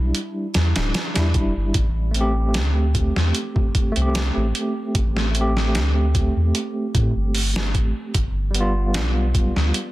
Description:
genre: trip hop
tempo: 75 BPM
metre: 4/4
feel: straight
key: A minor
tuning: A4 = 440 Hz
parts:
  - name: bright tine electric piano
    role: accompaniment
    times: 0.0-9.9 s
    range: G3 to G4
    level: -25 LUFS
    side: right 1 dB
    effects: tremolo, tape echo
  - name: soft dub sub bass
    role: bass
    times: 0.0-9.7 s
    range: D1 to A2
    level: -20 LUFS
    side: equal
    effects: none
  - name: trip hop sampler-style drum kit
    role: drums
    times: 0.1-9.9 s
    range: hi-hat, kick drum, snare drum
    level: -22 LUFS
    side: equal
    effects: none
room: light reverb, digital ambience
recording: dense, heavily limited modern master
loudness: -18 LUFS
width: side -17 dB against mid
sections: 0.0-9.9 A section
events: none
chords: 0.0 Em7; 1.7 Am7; 8.1 G7

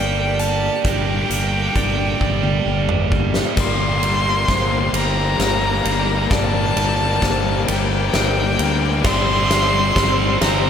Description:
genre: post-rock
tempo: 44 BPM (dotted quarters)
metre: 6/8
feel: straight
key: G minor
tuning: A4 = 441 Hz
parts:
  - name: warm violin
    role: melody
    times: 0.0-10.7 s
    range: G5 to C6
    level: -22 LUFS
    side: equal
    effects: digital delay
  - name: dark chamber string section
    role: sustained chords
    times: 0.0-10.7 s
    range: D3 to C5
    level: -31 LUFS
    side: left 1 dB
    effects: none
  - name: electric guitar through a small old amp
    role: arpeggios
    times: 0.0-10.7 s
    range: G3 to G4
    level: -29 LUFS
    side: left 2 dB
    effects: none
  - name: vibraphone with medium hard mallets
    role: arpeggios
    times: 0.0-10.7 s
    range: C5 to D5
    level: -28 LUFS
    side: right 4 dB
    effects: slapback echo, digital delay
  - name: tight distorted guitar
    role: riff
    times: 0.0-3.6, 9.0-10.7 s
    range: G3 to Bb4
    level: -24 LUFS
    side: right 9 dB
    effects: distortion, slapback echo
  - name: fuzz fingered electric bass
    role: bass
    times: 0.0-10.7 s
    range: G1 to D2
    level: -22 LUFS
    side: equal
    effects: overdrive
  - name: huge arena drum kit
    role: drums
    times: 0.4-10.6 s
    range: crash cymbal, hi-hat, kick drum, ride cymbal, snare drum, toms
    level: -22 LUFS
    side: equal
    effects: none
  - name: cranked stack guitar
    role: riff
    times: 3.6-10.7 s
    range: G3 to C4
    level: -24 LUFS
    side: left 9 dB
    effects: overdrive, slapback echo
room: moderate lush hall reverb, RT60 2.8 s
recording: big arena sound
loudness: -16 LUFS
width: side -8 dB against mid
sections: 0.0-3.6 A section; 3.6-10.7 B section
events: drum fill 2.2-3.6, 3.6-10.7; build-up 3.6-10.7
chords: 0.0 Gm; 9.1 C/G

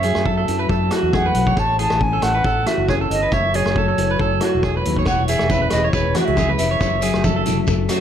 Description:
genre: highlife guitar band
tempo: 138 BPM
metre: 4/4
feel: swing 54% on 16ths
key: unclear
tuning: A4 = 440 Hz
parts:
  - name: silver concert flute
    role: melody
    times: 0.0-7.4 s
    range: C#5 to A5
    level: -22 LUFS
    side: right 2 dB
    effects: tape echo
  - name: nylon-string guitar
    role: accompaniment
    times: 0.0-8.0 s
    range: F#2 to A4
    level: -24 LUFS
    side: left 9 dB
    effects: none
  - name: electric guitar at the edge of break-up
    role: arpeggios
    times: 0.0-8.0 s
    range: F#4 to C#5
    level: -23 LUFS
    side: right 4 dB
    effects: tape echo
  - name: fingered electric bass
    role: bass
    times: 0.0-7.9 s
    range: E1 to F#2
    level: -23 LUFS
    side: equal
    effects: none
  - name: vintage drum kit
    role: drums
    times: 0.0-8.0 s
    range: hi-hat, kick drum, rim click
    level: -24 LUFS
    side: equal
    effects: none
  - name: congas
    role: percussion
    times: 5.1-7.8 s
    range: none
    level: -27 LUFS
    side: right 2 dB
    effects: none
  - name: shekere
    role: percussion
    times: 5.1-8.0 s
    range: none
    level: -29 LUFS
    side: left 3 dB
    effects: none
room: light reverb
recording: none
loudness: -16 LUFS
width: side -9 dB against mid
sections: 0.0-8.0 A section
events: none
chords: 0.0 F#m7; 1.6 A; 3.3 F#m7; 5.1 E6; 6.8 F#m7

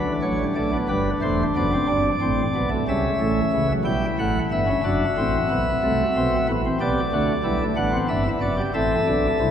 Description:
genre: classical, baroque-style 4-part fugue for pipe organ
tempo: 61 BPM (dotted quarters)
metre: 12/8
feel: straight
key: G major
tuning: A4 = 440 Hz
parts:
  - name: pipe organ, sparkling flutes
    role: solo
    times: 0.0-9.5 s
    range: E1 to G5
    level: -20 LUFS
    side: equal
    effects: none
room: wet church reverb, RT60 3.3 s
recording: heard from further back in the room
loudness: -20 LUFS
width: side -8 dB against mid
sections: 0.9-9.5 A section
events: none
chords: 0.0 Bm; 0.9 G; 2.9 A7; 4.8 D7/F#; 6.8 G/B; 8.7 Am

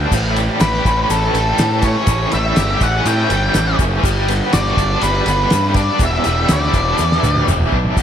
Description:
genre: psychedelic rock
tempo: 122 BPM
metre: 4/4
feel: straight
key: unclear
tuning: A4 = 440 Hz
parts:
  - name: biting overdriven guitar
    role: riff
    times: 0.0-8.0 s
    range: E2 to G4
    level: -20 LUFS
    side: equal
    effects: tremolo
  - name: fuzz picked electric bass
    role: bass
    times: 0.0-8.0 s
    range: E1 to A2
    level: -18 LUFS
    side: equal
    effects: overdrive
  - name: cloth-damped thuddy drum kit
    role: drums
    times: 0.1-8.0 s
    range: crash cymbal, kick drum, ride cymbal, snare drum, toms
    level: -20 LUFS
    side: equal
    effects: none
  - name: tube shaker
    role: percussion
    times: 0.1-8.0 s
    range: none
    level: -32 LUFS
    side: left 17 dB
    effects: none
  - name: octave-fuzz lead guitar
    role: melody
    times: 0.6-7.5 s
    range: A4 to G5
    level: -20 LUFS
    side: left 1 dB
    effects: distortion, ping-pong delay
room: light reverb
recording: none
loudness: -13 LUFS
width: side -9 dB against mid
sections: 0.0-8.0 A section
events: drum fill 7.0-8.0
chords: 0.1 A7; 4.0 Gmaj7; 6.0 Em7

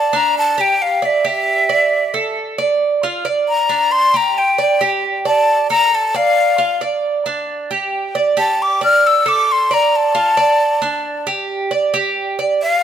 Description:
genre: latin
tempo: 135 BPM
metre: 4/4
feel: straight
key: unclear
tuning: A4 = 440 Hz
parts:
  - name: breathy jazz flute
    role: melody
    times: 0.0-12.8 s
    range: E5 to F6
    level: -14 LUFS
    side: left 2 dB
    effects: none
  - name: Cuban tres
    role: arpeggios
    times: 0.0-12.6 s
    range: D4 to D5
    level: -17 LUFS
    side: right 4 dB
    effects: none
room: moderate plate reverb, RT60 2.6 s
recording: none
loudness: -13 LUFS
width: side -9 dB against mid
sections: 0.0-12.6 A section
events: flute solo 0.0-12.6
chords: 0.1 G5; 1.9 Dm; 3.7 G5; 5.5 Dm; 7.3 G5; 9.0 Dm; 10.8 G5

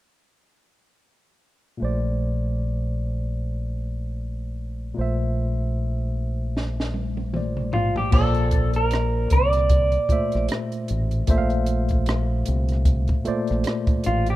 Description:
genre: R&B, neo-soul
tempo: 76 BPM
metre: 4/4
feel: swing 58% on 16ths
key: Bb lydian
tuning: A4 = 440 Hz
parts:
  - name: barky tine electric piano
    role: accompaniment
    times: 1.8-14.4 s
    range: Bb2 to F5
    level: -28 LUFS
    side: equal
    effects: overdrive, medium stereo tremolo
  - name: deep dub fingered electric bass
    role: bass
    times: 1.8-14.4 s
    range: A1 to C2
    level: -24 LUFS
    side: equal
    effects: none
  - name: compact cocktail drum kit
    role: drums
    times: 6.6-14.4 s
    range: crash cymbal, hi-hat, kick drum, rim click, snare drum, toms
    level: -23 LUFS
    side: equal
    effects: none
  - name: electric guitar through a small old amp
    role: melody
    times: 7.7-14.4 s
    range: F4 to D5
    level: -23 LUFS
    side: right 2 dB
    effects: none
room: small room ambience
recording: rough home demo mix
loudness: -21 LUFS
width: side -16 dB against mid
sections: 1.8-8.1 A section; 8.1-14.4 B section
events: drum fill 6.5-8.1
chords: 1.8 Bbmaj9

